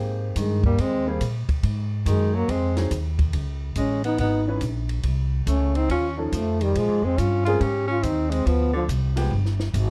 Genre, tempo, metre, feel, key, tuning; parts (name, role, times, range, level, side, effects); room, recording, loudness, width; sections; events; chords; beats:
jazz, small-group swing and bop; 141 BPM; 4/4; swing 66% on 8ths; Ab major; A4 = 440 Hz
warm upright piano; accompaniment; 0.0-9.3 s; Fb3 to Cb5; -32 LUFS; equal
upright bass; bass; 0.0-9.9 s; G1 to Bb2; -26 LUFS; equal
breathy trombone; melody; 0.4-8.8 s; F3 to Ab4; -27 LUFS; equal
warm tenor saxophone; second line; 0.4-8.9 s; D3 to F4; -32 LUFS; equal
compact cocktail drum kit; drums; 0.4-9.9 s; hi-hat, kick drum, ride cymbal, snare drum; -31 LUFS; equal
light reverb; dark, warm production; -23 LUFS; mono
0.0-9.9 A section
0.0 Abmaj9; 1.6 Ab7(no3); 3.3 Db7sus2; 5.0 F7b13; 6.7 Bbm9; 8.5 Dm7; 9.3 N.C.
0.36 0.78 1.21 | 1.63 2.06 2.48 2.91 | 3.34 3.76 4.19 4.62 | 5.04 5.47 5.89 6.32 | 6.75 7.17 7.60 8.03 | 8.46 8.88 9.31 9.74